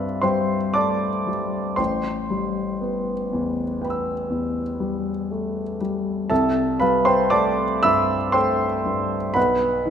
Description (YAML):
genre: classical, impressionist solo piano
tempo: 40 BPM (dotted quarters)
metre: 9/8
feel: rubato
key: C major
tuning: A4 = 440 Hz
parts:
  - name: clear grand piano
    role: solo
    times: 0.0-9.9 s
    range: A1 to E6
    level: -20 LUFS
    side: equal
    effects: none
room: wet scoring stage reverb, RT60 2.0 s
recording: none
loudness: -20 LUFS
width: side -8 dB against mid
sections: 0.0-9.9 A section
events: none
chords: 0.0 Cmaj9; 1.8 Am9; 6.3 C6; 9.4 B5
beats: 0.24 | 1.79 3.33 4.81 | 6.30 7.85 9.36